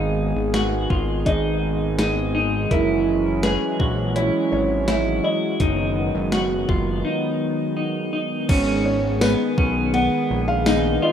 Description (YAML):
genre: dream pop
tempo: 83 BPM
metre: 4/4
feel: straight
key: G# minor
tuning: A4 = 440 Hz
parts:
  - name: felt-muted upright piano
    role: melody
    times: 0.0-11.1 s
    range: G#4 to F#5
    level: -27 LUFS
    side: right 1 dB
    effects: digital delay
  - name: warm analog pad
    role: sustained chords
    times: 0.0-11.1 s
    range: D#3 to G#4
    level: -24 LUFS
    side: equal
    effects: chorus
  - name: clean electric guitar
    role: arpeggios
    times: 0.0-11.1 s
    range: B3 to G#4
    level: -24 LUFS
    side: equal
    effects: lush chorus, digital delay
  - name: fat analog bass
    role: bass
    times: 0.0-11.0 s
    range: F#1 to B1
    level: -25 LUFS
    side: equal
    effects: none
  - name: gated 80s digital drum machine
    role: drums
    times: 0.5-10.8 s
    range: crash cymbal, hi-hat, kick drum, ride cymbal, snare drum, tambourine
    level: -23 LUFS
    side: equal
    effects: gated reverb, gated reverb snare
room: light reverb, digital ambience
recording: rough home demo mix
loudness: -19 LUFS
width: side -8 dB against mid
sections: 0.0-8.5 A section; 8.5-11.1 B section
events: break 7.0-8.5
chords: 0.0 G#m; 2.7 F#7; 5.6 B/F#; 8.5 G#madd9